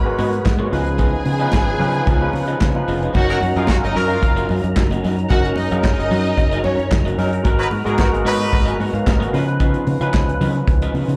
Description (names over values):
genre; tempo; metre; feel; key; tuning
disco; 112 BPM; 4/4; straight; unclear; A4 = 440 Hz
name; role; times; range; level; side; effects
warm studio string section; second line; 0.0-6.9 s; C#4 to B5; -26 LUFS; equal; plate reverb, slapback echo
barky tine electric piano; accompaniment; 0.0-11.2 s; E#3 to G#5; -25 LUFS; equal; overdrive, ensemble chorus, plate reverb, slapback echo
percussive tonewheel organ; sustained chords; 0.0-11.2 s; C#3 to A#5; -30 LUFS; equal; overdrive, chorus vibrato, slow rotary speaker, plate reverb
fingered electric bass; bass; 0.0-11.2 s; E#1 to C#3; -24 LUFS; equal; none
electric guitar at the edge of break-up; accompaniment; 0.1-11.1 s; B3 to E#5; -31 LUFS; equal; plate reverb, slapback echo
warm soul drum kit; drums; 0.2-11.2 s; crash cymbal, handclaps, hi-hat, kick drum, snare drum; -22 LUFS; equal; none
congas; percussion; 0.2-11.1 s; none; -30 LUFS; equal; none
warm horn section; stabs; 3.3-8.8 s; D#3 to B4; -25 LUFS; equal; plate reverb, slapback echo
room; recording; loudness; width
light reverb; live gig heard through the venue's PA, club reverb; -18 LUFS; mono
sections
0.0-3.1 A section; 3.1-11.2 B section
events
none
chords
0.0 G#m9; 0.7 C#9; 3.1 F#6; 7.5 G#m9; 9.3 C#9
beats
0.46 | 1.00 1.53 2.07 2.61 | 3.15 3.69 4.22 4.76 | 5.30 5.84 6.38 6.91 | 7.45 7.99 8.53 9.07 | 9.60 10.14 10.68